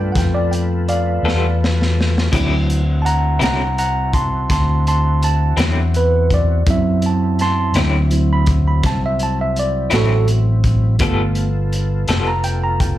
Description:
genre	slow blues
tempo	55 BPM (dotted quarters)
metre	12/8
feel	straight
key	unclear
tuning	A4 = 439 Hz
part	bright tine electric piano	accompaniment	0.0-13.0 s	F#3 to C6	-20 LUFS	right 3 dB	slapback echo
part	tonewheel organ	sustained chords	0.0-13.0 s	F#3 to B4	-27 LUFS	left 1 dB	chorus vibrato, wide subtle chorus
part	fingered electric bass	bass	0.0-13.0 s	F1 to G2	-17 LUFS	equal	none
part	crunchy breakbeat drum kit	drums	0.2-13.0 s	crash cymbal, hi-hat, kick drum, snare drum	-21 LUFS	equal	none
part	electric guitar through a small old amp	accompaniment	1.3-12.3 s	D3 to A4	-22 LUFS	left 5 dB	tremolo, slapback echo
room	little or no reverb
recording	live gig heard through the venue's PA, club reverb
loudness	-14 LUFS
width	side -13 dB against mid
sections	0.0-13.0 A section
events	tine electric piano solo 0.0-13.0; drum fill 1.2-2.3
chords	0.0 G9; 2.3 D9; 11.0 G9

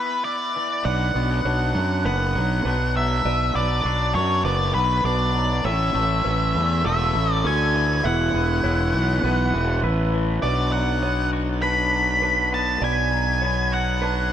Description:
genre	post-rock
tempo	100 BPM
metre	4/4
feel	straight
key	unclear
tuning	A4 = 442 Hz
part	octave-fuzz lead guitar	melody	0.0-14.3 s	B4 to B5	-23 LUFS	left 1 dB	distortion, slapback echo
part	twangy electric guitar	arpeggios	0.0-14.3 s	E2 to F#4	-29 LUFS	left 2 dB	spring reverb, slapback echo
part	pedal steel guitar	sustained chords	0.8-14.3 s	E3 to G#5	-32 LUFS	left 1 dB	none
part	mellow electric guitar	arpeggios	0.8-14.3 s	A4 to C#6	-31 LUFS	right 5 dB	slapback echo
part	fuzz fingered electric bass	bass	0.9-14.3 s	E1 to F#2	-23 LUFS	equal	overdrive
room	moderate huge ambient reverb, RT60 6.6 s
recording	none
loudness	-19 LUFS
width	side -10 dB against mid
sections	0.9-10.4 A section; 10.4-14.3 B section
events	none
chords	0.0 Esus2; 0.9 Bm; 5.6 A; 8.0 Esus2; 10.4 Bm

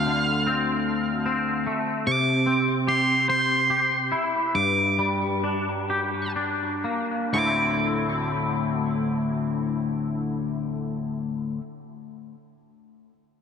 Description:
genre	rock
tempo	40-50 BPM (dotted quarters)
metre	6/8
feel	straight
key	D minor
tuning	A4 = 440 Hz
part	octave-fuzz lead guitar	melody	0.0-11.1 s	F5 to D6	-25 LUFS	right 2 dB	distortion, analog delay
part	twangy electric guitar	arpeggios	0.0-11.6 s	D2 to C5	-24 LUFS	left 2 dB	ensemble chorus, analog delay
room	moderate lush hall reverb, RT60 2.4 s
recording	none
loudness	-22 LUFS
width	side -7 dB against mid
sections	0.0-7.3 A section; 7.3-10.4 B section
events	slowing down 2.1-7.3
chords	0.0 Dm7; 2.1 C; 4.6 Gm; 7.3 Dsus2

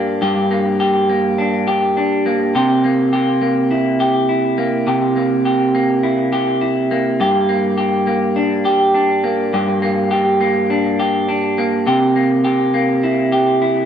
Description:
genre	dream pop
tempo	103 BPM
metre	4/4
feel	straight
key	unclear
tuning	A4 = 440 Hz
part	electric guitar through a small old amp	solo	0.0-13.9 s	G2 to G4	-14 LUFS	equal	wide subtle chorus, slapback echo
room	moderate plate reverb, RT60 2.7 s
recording	none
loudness	-14 LUFS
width	side -8 dB against mid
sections	0.0-11.9 A section; 11.9-13.9 B section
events	none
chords	0.0 Gm; 2.5 C7; 7.2 Gm; 11.9 C7

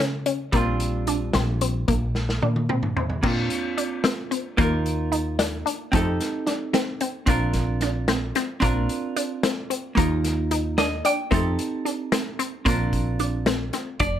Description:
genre	progressive instrumental, band music in an uneven meter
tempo	223 BPM (eighths)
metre	5/8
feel	straight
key	unclear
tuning	A4 = 440 Hz
part	vintage hollow-body jazz guitar	accompaniment	0.0-14.2 s	G3 to G5	-27 LUFS	right 3 dB	none
part	resonant blip pluck	arpeggios	0.0-14.2 s	A3 to Eb4	-26 LUFS	left 3 dB	phaser
part	woody fretless electric bass	bass	0.0-14.2 s	F1 to Db3	-26 LUFS	equal	none
part	vintage drum kit	drums	0.3-14.1 s	crash cymbal, hi-hat, kick drum, snare drum, toms	-26 LUFS	equal	none
room	light reverb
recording	none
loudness	-22 LUFS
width	side -10 dB against mid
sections	0.0-3.2 A section; 3.2-14.0 B section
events	drum fill 2.2-3.2; hollow-body jazz guitar fill 10.5-11.3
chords	0.0 Dbmaj7; 0.5 Bb6; 3.2 Bbadd9; 4.6 Ebsus2; 5.9 F7; 7.3 Bbadd9; 10.0 Ebsus2; 11.3 F7; 12.7 Bbadd9

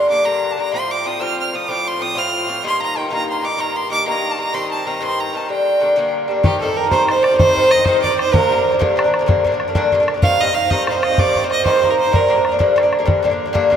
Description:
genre	celtic folk, Celtic slide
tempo	126 BPM (dotted quarters)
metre	12/8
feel	straight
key	unclear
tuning	A4 = 440 Hz
part	clear fiddle	melody	0.0-12.5 s	G4 to F6	-20 LUFS	right 1 dB	none
part	Irish bouzouki	accompaniment	0.0-13.8 s	G2 to F4	-18 LUFS	left 2 dB	none
part	cimbalom	second line	6.4-13.8 s	G4 to F5	-18 LUFS	right 3 dB	none
part	bodhran	percussion	6.4-13.8 s	none	-21 LUFS	left 1 dB	none
room	wet cathedral reverb, RT60 5.3 s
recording	in a vast, echoing space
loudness	-14 LUFS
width	side -8 dB against mid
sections	0.0-6.4 A section; 6.4-13.8 B section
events	none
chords	0.0 Gm; 0.7 F; 2.6 Eb; 4.5 Cm; 5.5 Gm; 6.4 Cm; 8.3 Gm; 10.2 Cm; 12.1 Gm

